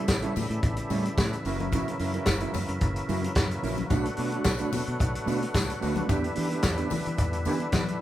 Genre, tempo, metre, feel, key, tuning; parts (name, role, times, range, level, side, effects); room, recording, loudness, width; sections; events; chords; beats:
disco; 110 BPM; 4/4; straight; E dorian; A4 = 440 Hz
mellow electric guitar; accompaniment; 0.0-7.9 s; F#3 to B4; -32 LUFS; right 3 dB; spring reverb
overdriven tonewheel organ; sustained chords; 0.0-8.0 s; C#3 to F#4; -33 LUFS; left 1 dB; chorus vibrato
fingered electric bass; bass; 0.1-7.9 s; F#1 to E3; -32 LUFS; equal
warm soul drum kit; drums; 0.1-8.0 s; hi-hat, kick drum, snare drum; -28 LUFS; equal
congas; percussion; 0.1-7.9 s; -37 LUFS; left 6 dB
tambourine; percussion; 0.1-7.9 s; -45 LUFS; left 8 dB
light reverb; band playing live in one room; -25 LUFS; side -13 dB against mid
0.0-8.0 A section
0.0 A7; 1.4 F#7; 3.9 Bm7; 6.1 Em7
0.08 0.63 1.17 | 1.72 2.27 2.81 3.36 | 3.91 4.45 5.00 5.55 | 6.09 6.64 7.19 7.74